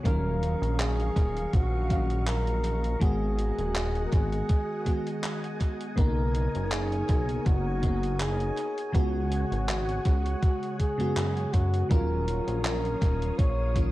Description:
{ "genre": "vaporwave", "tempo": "81 BPM", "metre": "4/4", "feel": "swing 54% on 16ths", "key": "Eb minor", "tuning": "A4 = 440 Hz", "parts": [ { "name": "FM electric piano with soft pad layer", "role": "accompaniment", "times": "0.0-13.9 s", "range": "C#3 to F5", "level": "-32 LUFS", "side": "equal", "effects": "wide subtle chorus, cassette tape, tape echo" }, { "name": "soft string machine", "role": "sustained chords", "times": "0.0-13.9 s", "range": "Gb3 to Eb6", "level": "-42 LUFS", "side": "equal", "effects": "ensemble chorus" }, { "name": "breathy flugelhorn", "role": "melody", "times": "0.1-13.8 s", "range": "F#4 to Db5", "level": "-32 LUFS", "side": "equal", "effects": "tape echo" }, { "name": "chorused synth bass", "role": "bass", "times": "0.1-13.9 s", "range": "Eb1 to Gb2", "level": "-29 LUFS", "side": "equal", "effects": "none" }, { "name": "electronic kick drum", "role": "drums", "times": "0.1-13.9 s", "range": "none", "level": "-24 LUFS", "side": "equal", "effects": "none" }, { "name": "gated 80s digital drum machine", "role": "drums", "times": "0.1-13.9 s", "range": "handclaps, hi-hat", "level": "-37 LUFS", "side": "equal", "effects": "gated reverb, tape echo" } ], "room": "digital ambience", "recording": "echo-heavy mix, cassette tape", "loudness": "-25 LUFS", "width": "side -17 dB against mid", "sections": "0.0-11.9 A section; 11.9-13.9 B section", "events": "band accent 11.2-11.5", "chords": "0.1 Ebm9; 3.0 Abm7; 6.0 Bmaj9; 8.6 Db7sus4; 11.9 Ebm9", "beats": "| 0.05 0.79 1.53 2.27 | 3.02 3.75 4.50 5.24 | 5.98 6.72 7.46 8.20 | 8.94 9.68 10.42 11.16 | 11.90 12.64 13.38" }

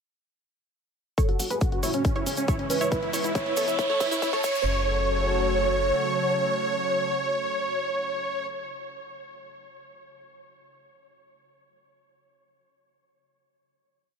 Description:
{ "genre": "uplifting trance", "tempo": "138 BPM", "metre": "4/4", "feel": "straight", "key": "F# minor", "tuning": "A4 = 437 Hz", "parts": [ { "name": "dense compressed supersaw", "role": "melody", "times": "1.2-8.5 s", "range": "C#4 to C#5", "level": "-28 LUFS", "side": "right 1 dB", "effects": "sidechain pumping, low-pass filter, tape echo" }, { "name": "analog pluck", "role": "second line", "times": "1.2-8.5 s", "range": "C#4 to C#5", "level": "-37 LUFS", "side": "equal", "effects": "none" }, { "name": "warm velvety synth lead", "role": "second line", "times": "1.2-8.5 s", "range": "A4 to C#5", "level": "-30 LUFS", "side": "right 1 dB", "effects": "chorus, dub echo" }, { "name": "lush unison pad", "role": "sustained chords", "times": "1.5-8.5 s", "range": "G#2 to A4", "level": "-33 LUFS", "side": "left 1 dB", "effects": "chorus, phaser, sidechain pumping" }, { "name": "big-room dance drum kit", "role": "drums", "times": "1.2-4.5 s", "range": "crash cymbal, hi-hat", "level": "-38 LUFS", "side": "left 3 dB", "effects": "high-pass filter on hats, high-pass filter on cymbals" }, { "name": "electronic kick drum", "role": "drums", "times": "1.2-4.5 s", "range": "none", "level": "-26 LUFS", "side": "left 1 dB", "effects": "none" }, { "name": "egg shaker", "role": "percussion", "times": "1.2-4.6 s", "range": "none", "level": "-36 LUFS", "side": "right 4 dB", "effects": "none" }, { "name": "riser", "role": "sound effects", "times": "2.1-4.7 s", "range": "none", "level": "-36 LUFS", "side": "right 2 dB", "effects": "none" }, { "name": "solid FM bass", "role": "bass", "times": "1.3-5.9 s", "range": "E1 to A2", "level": "-32 LUFS", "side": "equal", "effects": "sidechain pumping, high-pass filter" } ], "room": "light reverb, digital ambience", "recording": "high-pass filter", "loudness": "-23 LUFS", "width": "side -6 dB against mid", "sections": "1.2-4.7 build; 4.7-8.1 final hit", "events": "build-up 1.2-4.7; filter sweep on supersaw synth 1.2-4.7; filter sweep on synth pluck 1.2-4.7; filter sweep 1.2-4.7; riser 2.1-4.7; drum fill 2.9-4.7", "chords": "1.2 F#m; 2.0 C#m/E; 2.9 E; 3.8 A; 4.4 F#m", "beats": "| 1.18 1.61 2.05 2.48 | 2.92 3.35 3.79 4.22 | 4.66 5.09 5.53 5.96 | 6.40 6.83 7.27 7.70" }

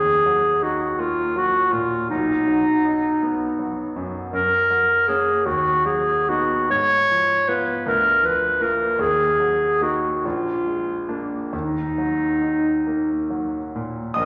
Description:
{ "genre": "classical, romantic duo for clarinet and grand piano", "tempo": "45-55 BPM (dotted quarters)", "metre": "6/8", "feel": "rubato", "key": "Eb minor", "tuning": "A4 = 436 Hz", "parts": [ { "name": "mellow clarinet", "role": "melody", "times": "0.0-14.3 s", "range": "D#4 to Db5", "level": "-21 LUFS", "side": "equal", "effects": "none" }, { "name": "bright concert grand piano", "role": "accompaniment", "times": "0.0-14.3 s", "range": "Bb1 to Eb6", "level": "-30 LUFS", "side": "equal", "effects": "none" } ], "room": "wet concert hall reverb, RT60 1.8 s", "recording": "none", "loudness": "-21 LUFS", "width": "mono", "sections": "0.0-14.2 A section", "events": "none", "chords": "0.0 Ebm; 2.1 B; 4.3 Gb; 5.5 B/D#; 6.7 Fdim/Ab; 7.9 Bb/D; 9.0 Ebm; 10.2 Bb7; 11.5 Ebm", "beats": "0.99 | 2.10 3.23 | 4.33 5.46 | 6.69 7.85 | 9.00 10.25 | 11.53 12.87 | 14.16" }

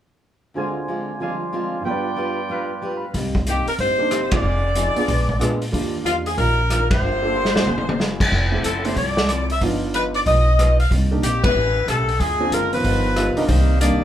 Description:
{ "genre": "jazz, big band swing", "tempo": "186 BPM", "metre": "4/4", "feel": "swing 64% on 8ths", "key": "C minor", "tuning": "A4 = 439 Hz", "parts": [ { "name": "picked steel-string acoustic guitar", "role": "accompaniment", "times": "0.5-14.0 s", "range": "G2 to B4", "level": "-28 LUFS", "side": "left 1 dB", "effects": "none" }, { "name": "warm baby grand piano", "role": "accompaniment", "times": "0.6-13.5 s", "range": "D2 to B5", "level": "-27 LUFS", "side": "right 3 dB", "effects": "none" }, { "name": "warm trumpet section", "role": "stabs", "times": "0.6-3.1 s", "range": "F4 to Ab5", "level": "-26 LUFS", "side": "right 2 dB", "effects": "none" }, { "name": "upright bass", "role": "bass", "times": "3.1-14.0 s", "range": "F1 to Bb2", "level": "-21 LUFS", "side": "equal", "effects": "none" }, { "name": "vintage drum kit", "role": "drums", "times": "3.1-13.9 s", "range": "crash cymbal, hi-hat, kick drum, ride cymbal, rim click, snare drum, toms", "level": "-24 LUFS", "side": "equal", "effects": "none" }, { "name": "warm saxophone section", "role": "melody", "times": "3.5-14.0 s", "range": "Bb3 to F5", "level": "-21 LUFS", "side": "left 1 dB", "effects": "none" }, { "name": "clear trombone section", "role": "second line", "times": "12.7-14.0 s", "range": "Eb3 to D#4", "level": "-23 LUFS", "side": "right 1 dB", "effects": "none" } ], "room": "light reverb", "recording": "band playing live in one room", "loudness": "-18 LUFS", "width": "side -11 dB against mid", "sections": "0.6-3.1 A section; 3.1-13.5 B section", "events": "band accent 4.3, 6.9, 11.4; drum fill 7.3-8.0", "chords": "0.6 Dm7b5; 1.8 G7; 3.1 Cm7; 4.4 Fm7; 5.1 Bb7b9; 5.7 Ebmaj9; 7.0 Gm7; 7.7 F#9; 8.3 Fmaj7; 9.6 G7b13; 10.9 Cm7; 11.5 A7; 12.2 Dm7b5; 12.8 G7alt; 13.5 Cm9", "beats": "| 0.56 0.88 1.20 1.52 | 1.85 2.17 2.50 2.82 | 3.14 3.47 3.79 4.11 | 4.44 4.76 5.08 5.41 | 5.73 6.05 6.38 6.70 | 7.02 7.35 7.67 7.99 | 8.32 8.64 8.96 9.29 | 9.61 9.93 10.26 10.58 | 10.90 11.22 11.55 11.87 | 12.19 12.52 12.84 13.16 | 13.48 13.81" }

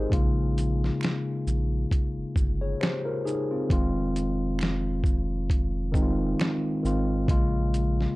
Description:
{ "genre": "lo-fi hip hop", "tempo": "67 BPM", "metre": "4/4", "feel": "swing 57% on 16ths", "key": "unclear", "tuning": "A4 = 438 Hz", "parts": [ { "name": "mellow tine electric piano", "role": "accompaniment", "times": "0.0-8.2 s", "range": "Db3 to Eb5", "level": "-27 LUFS", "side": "left 1 dB", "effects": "none" }, { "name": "soft dub sub bass", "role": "bass", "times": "0.0-8.1 s", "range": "F1 to Bb1", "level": "-28 LUFS", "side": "equal", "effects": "none" }, { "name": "lo-fi sampler-style drum kit", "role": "drums", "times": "0.1-8.1 s", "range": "hi-hat, kick drum, shaker, snare drum", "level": "-26 LUFS", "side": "equal", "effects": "none" }, { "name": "finger snap", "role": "percussion", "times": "1.0-6.6 s", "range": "none", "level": "-42 LUFS", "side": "right 5 dB", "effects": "none" } ], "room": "light reverb", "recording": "dark, warm production", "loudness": "-24 LUFS", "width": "side -20 dB against mid", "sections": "0.0-8.2 A section", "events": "none", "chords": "0.1 Bbm7; 3.7 Fm7; 7.3 Bbm7", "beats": "| 0.12 1.01 1.91 2.80 | 3.70 4.59 5.49 6.39 | 7.28" }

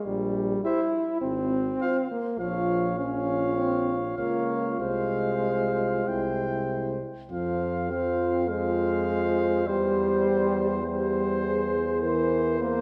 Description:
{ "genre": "classical, brass quintet", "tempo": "102 BPM", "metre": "4/4", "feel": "rubato", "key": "F minor", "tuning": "A4 = 440 Hz", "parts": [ { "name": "warm trombone", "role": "accompaniment", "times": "0.0-12.8 s", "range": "E3 to E4", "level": "-30 LUFS", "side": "equal", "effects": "none" }, { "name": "clear bass trombone", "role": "bass", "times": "0.1-12.8 s", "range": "Ab1 to F2", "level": "-34 LUFS", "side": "equal", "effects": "none" }, { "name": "clear trumpet", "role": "melody", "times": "0.6-12.8 s", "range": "C5 to G5", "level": "-36 LUFS", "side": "equal", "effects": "none" }, { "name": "mellow French horn", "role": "accompaniment", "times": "0.6-12.8 s", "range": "E4 to Bb4", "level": "-34 LUFS", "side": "equal", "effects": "none" }, { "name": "warm flugelhorn", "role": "second line", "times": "0.7-12.8 s", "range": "C5 to Db5", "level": "-34 LUFS", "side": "equal", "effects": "none" } ], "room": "wet scoring stage reverb, RT60 1.7 s", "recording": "heard from further back in the room", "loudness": "-27 LUFS", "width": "mono", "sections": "0.0-7.3 A section; 7.3-12.8 B section", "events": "none", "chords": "0.1 C7/Bb (rootless); 1.2 Fm/Ab; 2.4 Bbm; 4.8 Fm/C; 6.1 C; 7.3 Fm; 9.7 C/E; 12.0 C7/E", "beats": "| 0.07 0.65 1.23 1.81 | 2.39 2.98 3.56 4.17 | 4.79 5.43 6.06 6.69 | 7.31 7.91 8.49 9.08 | 9.67 10.25 10.84 11.43 | 12.02 12.60" }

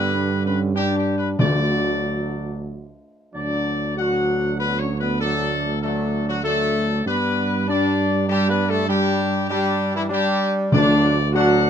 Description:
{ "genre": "classical", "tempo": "97 BPM", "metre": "3/4", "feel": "straight", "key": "D major", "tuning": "A4 = 438 Hz", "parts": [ { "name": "mellow trumpet section", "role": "melody", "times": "0.0-11.7 s", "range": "E4 to F#5", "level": "-24 LUFS", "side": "left 3 dB", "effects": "none" }, { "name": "clear trombone section", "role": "sustained chords", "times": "0.0-11.7 s", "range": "D3 to D4", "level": "-28 LUFS", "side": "right 2 dB", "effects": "none" }, { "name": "dark French horn section", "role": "sustained chords", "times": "0.0-11.7 s", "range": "E3 to F#4", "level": "-24 LUFS", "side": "left 2 dB", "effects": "none" }, { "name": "mellow tuba", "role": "bass", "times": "0.0-11.7 s", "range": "D2 to G2", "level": "-24 LUFS", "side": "right 4 dB", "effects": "none" }, { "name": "timpani", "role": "percussion", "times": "1.4-2.3, 10.7-11.6 s", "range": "D3", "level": "-22 LUFS", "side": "left 1 dB", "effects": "none" } ], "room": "light reverb", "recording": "close, detailed microphones", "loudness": "-18 LUFS", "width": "side -8 dB against mid", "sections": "0.0-3.3 A section; 3.3-11.7 B section", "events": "none", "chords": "0.0 G; 1.4 D; 7.1 G; 10.7 D", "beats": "0.14 0.77 | 1.40 2.05 2.69 | 3.35 3.97 4.59 | 5.20 5.82 6.44 | 7.06 7.67 8.28 | 8.89 9.50 10.11 | 10.73 11.34" }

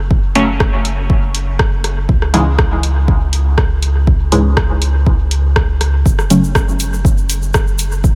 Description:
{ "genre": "dub techno", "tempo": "121 BPM", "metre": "4/4", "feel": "straight", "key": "F# minor", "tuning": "A4 = 440 Hz", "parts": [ { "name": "soft dub sub bass", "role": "bass", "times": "0.0-8.2 s", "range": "F#1 to C#2", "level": "-18 LUFS", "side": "equal", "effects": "sidechain pumping" }, { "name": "electronic kick drum", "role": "drums", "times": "0.1-8.1 s", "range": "none", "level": "-16 LUFS", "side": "equal", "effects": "none" }, { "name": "filtered dub chord stab", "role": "stabs", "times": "0.4-6.4 s", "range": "G#2 to C#4", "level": "-20 LUFS", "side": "equal", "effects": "chorus, phaser, sidechain pumping, dub echo" }, { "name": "deep house drum kit", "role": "drums", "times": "0.4-7.9 s", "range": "hi-hat, rim click", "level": "-23 LUFS", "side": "equal", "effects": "dub echo" }, { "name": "egg shaker", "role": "percussion", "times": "6.1-8.1 s", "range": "none", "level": "-30 LUFS", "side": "equal", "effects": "none" } ], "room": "light reverb", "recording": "none", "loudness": "-14 LUFS", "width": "mono", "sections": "0.0-8.2 A section", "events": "none", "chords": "0.0 F#5; 2.1 C#5; 6.1 F#5", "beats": "| 0.11 0.60 1.10 1.59 | 2.09 2.58 3.08 3.58 | 4.07 4.57 5.07 5.56 | 6.06 6.55 7.05 7.54 | 8.04" }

